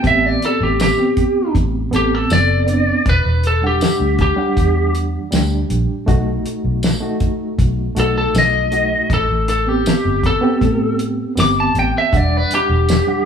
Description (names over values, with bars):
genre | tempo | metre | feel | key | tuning
straight-eighth soul blues | 79 BPM | 4/4 | straight | E minor | A4 = 440 Hz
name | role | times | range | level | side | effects
lightly driven lead guitar | melody | 0.0-13.3 s | G4 to D6 | -17 LUFS | left 1 dB | none
reed electric piano | accompaniment | 0.0-13.3 s | G3 to F#5 | -21 LUFS | right 2 dB | fast tremolo
vintage muted fingered electric bass | bass | 0.0-13.0 s | E1 to A2 | -19 LUFS | equal | none
cloth-damped thuddy drum kit | drums | 0.0-13.1 s | hi-hat, kick drum, snare drum, tambourine | -20 LUFS | equal | none
room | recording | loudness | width
moderate large studio reverb, RT60 1.3 s | band playing live in one room | -14 LUFS | side -7 dB against mid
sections
0.0-13.3 A section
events
lead electric guitar solo 0.0-13.3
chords
0.0 Am7; 3.1 Em7; 6.1 B7; 9.1 Am7; 12.1 Em7